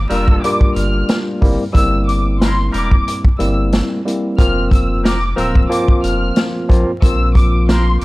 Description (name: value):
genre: hip hop, boom-bap hip-hop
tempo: 91 BPM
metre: 4/4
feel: swing 54% on 16ths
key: unclear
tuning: A4 = 441 Hz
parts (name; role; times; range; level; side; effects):
- warm studio violin section; melody; 0.0-8.0 s; C6 to F6; -22 LUFS; left 1 dB; high-pass filter, low-pass filter, tape echo
- saturated sub bass; bass; 0.0-8.0 s; D1 to Bb1; -18 LUFS; equal; transformer saturation
- tine electric piano; accompaniment; 0.1-8.0 s; F3 to F4; -19 LUFS; equal; medium stereo tremolo, cassette tape, high-pass filter, low-pass filter
- clear trumpet section; stabs; 0.1-8.0 s; G3 to Bb4; -27 LUFS; right 1 dB; high-pass filter, low-pass filter, tape echo
- vintage drum kit; drums; 0.1-8.0 s; hi-hat, kick drum, snare drum; -15 LUFS; equal; none
room: small room ambience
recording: dry, gritty hardware recording, vinyl crackle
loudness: -12 LUFS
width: side -20 dB against mid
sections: 0.0-8.0 A section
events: none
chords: 0.0 Gm7; 1.4 C7; 4.4 Fsus4; 6.7 Bbsus2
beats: 0.43 1.09 | 1.75 2.41 3.07 3.73 | 4.39 5.04 5.71 6.36 | 7.02 7.68